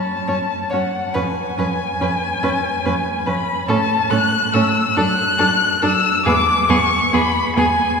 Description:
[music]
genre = classical, slow romantic movement for string quartet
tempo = 46 BPM (dotted quarters)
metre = 6/8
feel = rubato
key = A major from 3.7 s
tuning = A4 = 440 Hz
[part]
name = muted violin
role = melody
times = 0.0-8.0 s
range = F#5 to F#6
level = -18 LUFS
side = left 3 dB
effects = none
[part]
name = muted violin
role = second line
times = 0.3-7.7 s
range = G#4 to C#5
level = -25 LUFS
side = left 1 dB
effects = none
[part]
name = muted viola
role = accompaniment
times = 0.3-7.6 s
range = B3 to D4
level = -24 LUFS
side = right 2 dB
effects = none
[part]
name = muted cello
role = bass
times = 0.3-7.7 s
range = E2 to A2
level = -22 LUFS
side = right 3 dB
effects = none
[sound]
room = wet church reverb, RT60 3.2 s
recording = recorded in a church or concert hall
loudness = -15 LUFS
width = side -5 dB against mid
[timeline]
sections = 0.0-8.0 A section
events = none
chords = 0.0 F#m; 1.2 C#7/E#; 3.7 A; 5.0 D/F#; 6.3 E

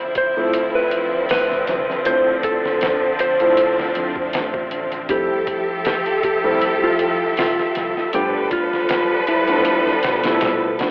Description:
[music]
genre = trip hop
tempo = 79 BPM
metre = 4/4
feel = swing 54% on 16ths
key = D dorian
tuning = A4 = 440 Hz
[part]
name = clean lap steel guitar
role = melody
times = 0.0-10.0 s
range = E4 to C5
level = -24 LUFS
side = equal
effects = tape echo
[part]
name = warm upright piano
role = accompaniment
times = 0.0-10.9 s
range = F3 to E4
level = -26 LUFS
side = equal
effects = tremolo, tape echo
[part]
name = clear studio string section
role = sustained chords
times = 0.0-10.9 s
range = D3 to E5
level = -23 LUFS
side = equal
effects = none
[part]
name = trip hop sampler-style drum kit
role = drums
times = 0.2-10.9 s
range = hi-hat, kick drum, snare drum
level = -29 LUFS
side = equal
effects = small room ambience
[part]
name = fingered electric bass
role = bass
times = 1.3-10.9 s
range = A1 to B2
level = -37 LUFS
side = equal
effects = none
[sound]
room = moderate lush hall reverb, RT60 2.2 s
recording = rough home demo mix, telephone sound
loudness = -19 LUFS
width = mono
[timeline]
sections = 0.0-10.9 A section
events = kick drops out 9.7-10.9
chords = 0.0 Dm9; 5.1 Fmaj9; 8.1 G9

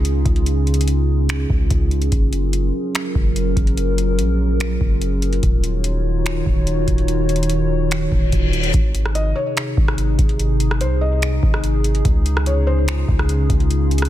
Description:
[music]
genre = hip hop, atmospheric cloud-rap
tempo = 145 BPM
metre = 4/4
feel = half-time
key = unclear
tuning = A4 = 440 Hz
[part]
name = dark analog pad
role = sustained chords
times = 0.0-14.1 s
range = C3 to Db5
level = -22 LUFS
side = equal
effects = chorus
[part]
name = long sustained 808-style bass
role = bass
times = 0.0-14.1 s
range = Eb1 to Db2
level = -19 LUFS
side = equal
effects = none
[part]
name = booming analog drum machine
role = drums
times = 0.0-14.1 s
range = finger snaps, hi-hat, kick drum, rim click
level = -20 LUFS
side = equal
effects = soft clipping on snare
[part]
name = reverse cymbal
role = sound effects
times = 8.2-8.7 s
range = none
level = -26 LUFS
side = left 5 dB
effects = none
[part]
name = felt-muted upright piano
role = melody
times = 9.2-13.3 s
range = C5 to Eb5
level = -27 LUFS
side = left 2 dB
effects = digital delay
[sound]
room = digital ambience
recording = dense, heavily limited modern master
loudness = -16 LUFS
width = side -13 dB against mid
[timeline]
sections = 0.0-8.7 A section; 8.7-14.1 B section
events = reverse cymbal 8.2-8.7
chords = 0.0 Dbadd9; 2.1 Gbmaj7; 5.4 Ebm7; 8.7 Ab; 12.1 Dbadd9

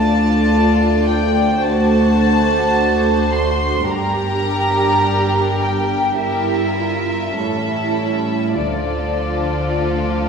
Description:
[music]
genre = classical, slow romantic movement for string orchestra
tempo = 48-54 BPM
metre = 4/4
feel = rubato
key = D minor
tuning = A4 = 440 Hz
[part]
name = warm studio violin section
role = melody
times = 0.0-10.3 s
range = D5 to C6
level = -21 LUFS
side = left 1 dB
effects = none
[part]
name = dark studio violin section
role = second line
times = 0.0-10.3 s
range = E4 to D5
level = -21 LUFS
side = right 1 dB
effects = none
[part]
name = dark studio viola section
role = accompaniment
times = 0.0-10.3 s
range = F3 to E4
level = -20 LUFS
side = equal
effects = none
[part]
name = dark studio cello section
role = bass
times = 0.0-10.3 s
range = D2 to D3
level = -23 LUFS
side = right 1 dB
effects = none
[part]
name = dark symphonic double bass section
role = bass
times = 0.0-10.3 s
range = G1 to D2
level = -24 LUFS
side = equal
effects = none
[sound]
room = wet concert hall reverb, RT60 1.7 s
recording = heard from further back in the room, small room ambience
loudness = -15 LUFS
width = side -6 dB against mid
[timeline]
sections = 0.0-10.3 A section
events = none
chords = 0.0 Dm; 3.9 Gm; 6.2 Edim/G; 7.4 A7; 8.6 Dm

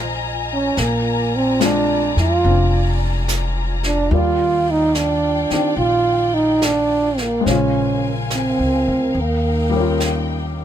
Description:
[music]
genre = jazz ballad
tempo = 72 BPM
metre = 4/4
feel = swing 67% on 8ths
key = Eb major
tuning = A4 = 439 Hz
[part]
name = warm baby grand piano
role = accompaniment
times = 0.0-10.6 s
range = Db3 to D5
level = -25 LUFS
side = left 8 dB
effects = none
[part]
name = warm symphonic string section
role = sustained chords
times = 0.0-10.6 s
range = Eb4 to Bb5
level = -26 LUFS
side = left 3 dB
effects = none
[part]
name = upright bass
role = bass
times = 0.0-10.6 s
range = F1 to F2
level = -21 LUFS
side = equal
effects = none
[part]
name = dark trombone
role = melody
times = 0.5-10.6 s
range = Bb3 to F4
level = -18 LUFS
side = right 3 dB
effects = none
[part]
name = jazz brush drum kit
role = drums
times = 0.8-10.6 s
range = brushed snare drum, hi-hat, snare drum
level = -28 LUFS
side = right 1 dB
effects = none
[sound]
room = little or no reverb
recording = close, detailed microphones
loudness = -16 LUFS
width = side -10 dB against mid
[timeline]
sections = 0.0-10.6 A section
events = none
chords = 0.0 Gbmaj13 (rootless); 0.8 Bb7; 4.1 Ebmaj9; 7.5 Bbm7; 9.1 Eb7

